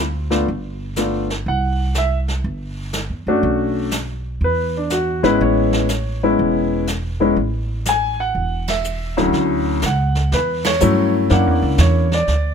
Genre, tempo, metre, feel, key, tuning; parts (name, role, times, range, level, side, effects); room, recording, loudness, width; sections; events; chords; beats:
jazz piano trio; 122 BPM; 4/4; swing 67% on 8ths; A major, D major from 9.3 s; A4 = 440 Hz
upright bass; bass; 0.0-12.5 s; E1 to G2; -21 LUFS; right 1 dB
warm grand piano; melody; 0.3-12.5 s; D2 to G#5; -18 LUFS; left 2 dB; plate reverb
jazz brush drum kit; drums; 0.3-12.5 s; brushed snare drum, hi-hat, ride cymbal, snare drum; -26 LUFS; right 1 dB
light reverb; close, detailed microphones; -16 LUFS; side -7 dB against mid
0.0-9.3 A section; 9.3-12.5 B section
band accent 8.6, 10.6
0.5 G9; 1.5 C5; 3.4 Bm9; 4.4 E; 5.4 Amaj7; 9.3 Dmaj9; 11.3 F#7b13
0.47 0.97 | 1.46 1.95 2.45 2.94 | 3.43 3.92 4.42 4.91 | 5.40 5.89 6.38 6.88 | 7.37 7.86 8.35 8.84 | 9.33 9.82 10.31 10.80 | 11.30 11.79 12.28